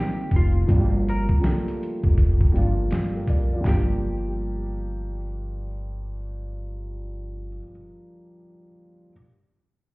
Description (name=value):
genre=lo-fi hip hop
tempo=81 BPM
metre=4/4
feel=swing 65% on 16ths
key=G minor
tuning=A4 = 440 Hz
part: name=archtop guitar, miked and amplified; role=melody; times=0.0-7.6 s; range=F4 to Bb4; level=-34 LUFS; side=equal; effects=low-pass filter, tape echo
part: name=felt-muted upright piano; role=accompaniment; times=0.0-9.1 s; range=Eb3 to F5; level=-30 LUFS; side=equal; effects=cassette tape, low-pass filter
part: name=upright bass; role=bass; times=0.3-7.6 s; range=F1 to G2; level=-25 LUFS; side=equal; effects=none
part: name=boom bap sampler-style drum kit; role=drums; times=0.3-3.9 s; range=handclaps, hi-hat, kick drum, snare drum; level=-21 LUFS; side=equal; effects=vintage 12-bit sampler grit
room=little or no reverb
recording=heard muffled through a wall, stone room reverb, EQ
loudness=-20 LUFS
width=side -24 dB against mid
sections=0.0-3.6 A section; 3.6-6.6 B section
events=none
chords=0.0 F9sus4; 0.7 Gm7